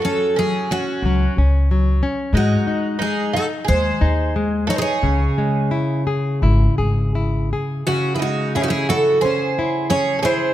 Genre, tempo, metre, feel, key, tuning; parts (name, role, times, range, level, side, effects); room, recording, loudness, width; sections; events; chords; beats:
fado-style ballad; 82-93 BPM; 4/4; rubato; C# harmonic minor; A4 = 440 Hz
picked twelve-string acoustic guitar; melody; 0.0-10.5 s; F#4 to D#5; -21 LUFS; right 1 dB
picked twelve-string acoustic guitar; second line; 0.0-10.5 s; C#4 to B#4; -26 LUFS; right 6 dB
nylon-string guitar; accompaniment; 0.0-10.5 s; C#3 to G#4; -22 LUFS; left 2 dB
upright bass; bass; 1.0-7.5 s; G#1 to G#2; -17 LUFS; equal
moderate recital hall reverb, RT60 1.7 s; -16 LUFS; side -13 dB against mid
0.0-7.9 A section; 7.9-10.5 A section
0.0 F#5; 2.3 G#7; 5.0 C#m
0.37 1.03 1.69 | 2.33 3.00 3.68 4.35 | 5.03 5.71 6.42 7.15 | 7.87 8.56 9.26 9.93